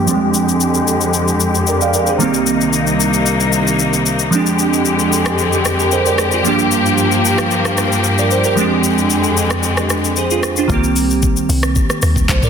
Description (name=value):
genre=amapiano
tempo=113 BPM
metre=4/4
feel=straight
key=F dorian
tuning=A4 = 439 Hz
part: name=glassy digital keys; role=accompaniment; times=0.0-12.5 s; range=Eb3 to F5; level=-16 LUFS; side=right 4 dB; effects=chorus, low-pass filter
part: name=warm symphonic string section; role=sustained chords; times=0.0-10.7 s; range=C2 to G4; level=-16 LUFS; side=left 2 dB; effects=sidechain pumping, low-pass filter
part: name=smooth R&B drum kit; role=drums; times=0.1-12.5 s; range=handclaps, hi-hat, kick drum, rim click, shaker, toms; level=-20 LUFS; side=left 2 dB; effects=soft clipping on snare
part: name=deep log drum bass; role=bass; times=10.7-12.5 s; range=C2 to Eb2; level=-17 LUFS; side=left 1 dB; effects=none
room=moderate lush hall reverb, RT60 1.8 s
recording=dense, heavily limited modern master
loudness=-12 LUFS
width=side -7 dB against mid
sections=0.0-10.7 A section; 10.7-12.5 B section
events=filter sweep 0.0-10.7; drop 10.7-12.5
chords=0.1 Fm69; 2.2 Cm7; 4.3 Fm69; 6.4 Gm7; 8.6 Fm69; 10.7 Cm7